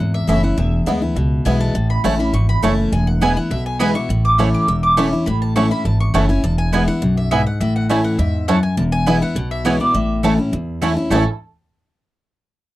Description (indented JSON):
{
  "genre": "bluegrass",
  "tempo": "205 BPM",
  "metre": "4/4",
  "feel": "straight",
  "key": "A major",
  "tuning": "A4 = 440 Hz",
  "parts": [
    { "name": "mandolin", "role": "melody", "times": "0.0-11.2 s", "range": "C#5 to E6", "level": "-23 LUFS", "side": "equal", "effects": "none" },
    { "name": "picked steel-string acoustic guitar", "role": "accompaniment", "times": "0.0-11.2 s", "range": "E2 to E4", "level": "-19 LUFS", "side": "left 2 dB", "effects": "none" },
    { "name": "upright bass", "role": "bass", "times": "0.0-11.2 s", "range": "E1 to E2", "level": "-20 LUFS", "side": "equal", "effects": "none" },
    { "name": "bluegrass banjo", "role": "melody", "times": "0.3-11.3 s", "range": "A3 to A4", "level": "-23 LUFS", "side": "right 4 dB", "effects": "none" },
    { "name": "mandolin", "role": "stabs", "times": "2.0-11.2 s", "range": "A3 to A5", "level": "-21 LUFS", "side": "right 5 dB", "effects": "none" }
  ],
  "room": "little or no reverb",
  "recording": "dry, close 1970s-style studio recording",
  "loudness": "-15 LUFS",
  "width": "side -16 dB against mid",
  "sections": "0.0-11.1 A section; 11.1-12.3 B section",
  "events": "none",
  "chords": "0.0 A; 0.6 E; 1.8 A; 2.9 E; 4.1 A; 6.4 E; 7.6 A; 8.8 E; 9.9 A"
}